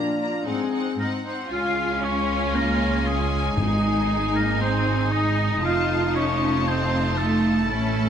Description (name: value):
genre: cinematic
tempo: 116 BPM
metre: 4/4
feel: straight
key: Db major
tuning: A4 = 440 Hz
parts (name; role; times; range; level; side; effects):
- rich studio violin section; melody; 0.0-8.1 s; Gb5 to Bb5; -32 LUFS; left 5 dB; none
- clear studio violin section; second line; 0.0-8.1 s; D4 to F4; -33 LUFS; equal; none
- clear symphonic viola section; accompaniment; 0.0-8.1 s; Bb3 to Eb4; -30 LUFS; equal; none
- warm French horn section; sustained chords; 0.0-8.1 s; Ab3 to Eb4; -29 LUFS; left 5 dB; none
- dark trumpet section; stabs; 0.0-1.0 s; F4 to Ab4; -33 LUFS; equal; none
- rich symphonic cello section; bass; 0.0-8.1 s; Ab2 to F4; -26 LUFS; right 2 dB; none
- timpani; percussion; 0.0-0.1, 3.6-4.3 s; Ab2 to Bb2; -29 LUFS; left 1 dB; none
- clear oboe; second line; 1.0-8.1 s; Ab4 to F5; -28 LUFS; equal; none
- rich symphonic double bass section; bass; 1.5-8.1 s; F1 to Db2; -26 LUFS; right 3 dB; none
room: moderate scoring stage reverb, RT60 1.5 s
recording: none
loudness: -20 LUFS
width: side -8 dB against mid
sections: 0.0-1.5 A section; 1.5-8.1 B section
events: none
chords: 0.4 Ab7; 1.5 Db; 3.6 Ab; 5.6 F